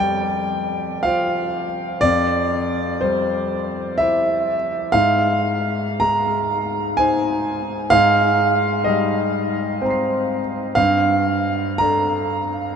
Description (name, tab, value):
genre	classical, impressionist solo piano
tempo	62 BPM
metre	3/4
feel	uneven beats, rubato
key	unclear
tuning	A4 = 441 Hz
part	clear grand piano	solo	0.0-12.8 s	F2 to C7	-17 LUFS	equal	none
room	wet huge ambient reverb, RT60 7.1 s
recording	in a vast, echoing space, nothing above 10.3 kHz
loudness	-17 LUFS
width	side -7 dB against mid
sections	0.0-12.8 A section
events	none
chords	0.0 Fsus2; 2.0 Dm11/F; 4.9 Ab69; 7.9 Cm7/Ab; 10.8 Gm9